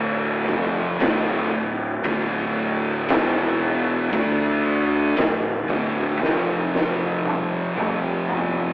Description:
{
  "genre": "stoner and doom metal",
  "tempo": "58 BPM",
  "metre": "4/4",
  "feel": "straight",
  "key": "D minor",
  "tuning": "A4 = 441 Hz",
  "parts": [
    { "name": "thick fuzz guitar", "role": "riff", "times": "0.0-8.7 s", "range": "D2 to D4", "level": "-23 LUFS", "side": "equal", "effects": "distortion" },
    { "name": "fuzz fingered electric bass", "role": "bass", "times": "0.0-8.7 s", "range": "D1 to D2", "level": "-26 LUFS", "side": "equal", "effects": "overdrive" },
    { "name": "oversized low-tuned drum kit", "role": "drums", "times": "0.5-8.7 s", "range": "kick drum, ride cymbal, snare drum, toms", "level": "-24 LUFS", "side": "equal", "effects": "none" }
  ],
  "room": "light reverb",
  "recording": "rough rehearsal-room recording, warm saturation, telephone sound",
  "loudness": "-19 LUFS",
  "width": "side -21 dB against mid",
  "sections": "0.0-8.7 A section",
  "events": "drum fill 6.2-8.7",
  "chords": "0.0 Dm; 3.1 E5; 4.1 D5; 6.2 F5"
}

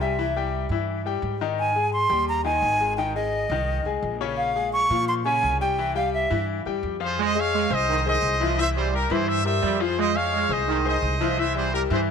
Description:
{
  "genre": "latin",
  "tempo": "172 BPM",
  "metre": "4/4",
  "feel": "straight",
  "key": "F minor",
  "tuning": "A4 = 441 Hz",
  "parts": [
    { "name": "breathy bright silver concert flute", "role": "melody", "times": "0.0-6.5 s", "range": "Eb5 to Db6", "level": "-24 LUFS", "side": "right 1 dB", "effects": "none" },
    { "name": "bright concert grand piano", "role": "accompaniment", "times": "0.0-12.1 s", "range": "Db3 to Ab5", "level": "-27 LUFS", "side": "left 10 dB", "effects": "none" },
    { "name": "upright bass", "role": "bass", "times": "0.0-12.1 s", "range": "Ab1 to Bb2", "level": "-29 LUFS", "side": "right 1 dB", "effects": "none" },
    { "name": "bright trumpet section", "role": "melody", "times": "7.0-12.0 s", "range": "G4 to F5", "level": "-24 LUFS", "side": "equal", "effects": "none" },
    { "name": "brilliant trombone section", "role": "second line", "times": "7.2-12.1 s", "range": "Eb3 to Ab3", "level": "-28 LUFS", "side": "right 14 dB", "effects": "none" }
  ],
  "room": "moderate echo chamber reverb, RT60 2.5 s",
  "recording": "1960s-style stereo with parts hard left and right",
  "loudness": "-21 LUFS",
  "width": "side -6 dB against mid",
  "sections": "0.0-7.2 A section; 7.2-12.1 B section",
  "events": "none",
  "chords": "0.2 C; 1.6 Abmaj7; 3.0 Bbm11; 4.4 Bbm7; 5.8 C; 7.2 Fm7; 8.6 C7; 10.0 Fm7; 11.4 C7"
}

